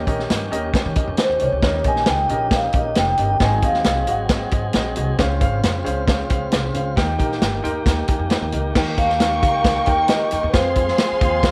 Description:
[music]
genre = uptempo 1960s-style soul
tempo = 135 BPM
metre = 4/4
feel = straight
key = unclear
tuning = A4 = 441 Hz
[part]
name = dark grand piano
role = accompaniment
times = 0.0-11.5 s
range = Ab2 to C6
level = -28 LUFS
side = equal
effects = none
[part]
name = tonewheel organ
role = sustained chords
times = 0.0-11.5 s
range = Db3 to Ab4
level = -34 LUFS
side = equal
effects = overdrive, subtle chorus
[part]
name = upright bass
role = bass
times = 0.0-11.5 s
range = F1 to Eb3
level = -27 LUFS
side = equal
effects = none
[part]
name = vintage drum kit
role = drums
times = 0.1-11.5 s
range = crash cymbal, hi-hat, kick drum, snare drum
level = -23 LUFS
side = equal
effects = none
[part]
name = vibraphone with soft mallets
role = melody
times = 1.2-4.9, 9.0-11.5 s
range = Cb5 to Ab5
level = -22 LUFS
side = equal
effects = none
[part]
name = warm symphonic violin section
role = second line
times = 8.7-11.5 s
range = Ab4 to Db6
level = -28 LUFS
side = equal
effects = none
[sound]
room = light reverb, small room ambience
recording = none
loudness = -19 LUFS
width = mono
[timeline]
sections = 0.0-8.8 A section; 8.8-11.5 B section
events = grand piano fill 7.4-8.8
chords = 0.0 Eb7; 3.4 Ab7; 5.2 Dbmaj7; 7.0 Eb; 10.5 Fm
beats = 0.29 0.74 1.18 | 1.63 2.07 2.52 2.96 | 3.41 3.85 4.30 4.75 | 5.19 5.64 6.08 6.53 | 6.97 7.42 7.86 8.31 | 8.76 9.20 9.65 10.09 | 10.54 10.99 11.43

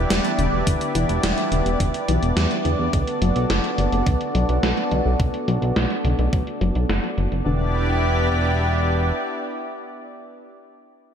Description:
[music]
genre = synthwave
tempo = 106 BPM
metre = 4/4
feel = straight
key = E minor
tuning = A4 = 437 Hz
[part]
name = lush unison pad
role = sustained chords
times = 0.0-10.5 s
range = B3 to D5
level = -24 LUFS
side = equal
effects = chorus, sidechain pumping
[part]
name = soft round pluck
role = arpeggios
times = 0.0-7.7 s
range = D3 to A3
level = -28 LUFS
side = left 2 dB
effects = chorus, analog delay
[part]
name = chorused synth bass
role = bass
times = 0.0-9.1 s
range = E1 to E2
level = -22 LUFS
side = equal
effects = tube saturation, sidechain pumping
[part]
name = gated 80s digital drum machine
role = drums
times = 0.1-7.4 s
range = hi-hat, snare drum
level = -27 LUFS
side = right 1 dB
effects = gated reverb, gated reverb snare, low-pass filter on hats, low-pass filter on snare, low-pass filter on toms
[part]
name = electronic kick drum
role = drums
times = 0.7-6.4 s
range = none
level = -22 LUFS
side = equal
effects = none
[sound]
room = moderate plate reverb, RT60 3.1 s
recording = dreamy mix soaked in reverb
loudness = -19 LUFS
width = side -8 dB against mid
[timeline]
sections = 0.0-7.5 A section; 7.5-9.7 B section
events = filter sweep on drum 0.0-7.5; filter sweep on analog synth pad 0.0-7.5; filter sweep on synth arpeggio sound 0.0-7.5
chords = 0.0 Em7; 2.9 Bm7; 7.5 Em7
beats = 0.10 | 0.67 1.24 1.80 2.37 | 2.93 3.50 4.07 4.63 | 5.20 5.76 6.33 6.89 | 7.46 8.03 8.59 9.16

